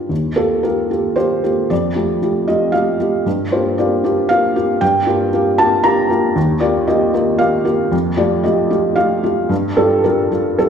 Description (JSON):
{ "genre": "neoclassical minimalist piano", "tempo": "115 BPM", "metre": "3/4", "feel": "rubato", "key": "G minor", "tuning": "A4 = 441 Hz", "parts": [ { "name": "felt-muted upright piano", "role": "solo", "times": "0.0-10.7 s", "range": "Eb2 to Bb5", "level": "-14 LUFS", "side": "equal", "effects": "none" } ], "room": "wet recital hall reverb, RT60 1.6 s", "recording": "recorded in a church or concert hall", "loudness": "-14 LUFS", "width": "side -7 dB against mid", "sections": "0.1-10.7 A section", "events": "none", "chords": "0.1 Ebadd9; 1.7 Fadd9; 3.3 Gm7; 6.4 Ebadd9; 7.9 Fadd9; 9.5 Gm7", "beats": "| 0.10 0.64 1.18 | 1.70 2.22 2.74 | 3.25 3.78 4.29 | 4.81 5.32 5.83 | 6.36 6.88 7.40 | 7.93 8.45 8.97 | 9.50 10.04 10.58" }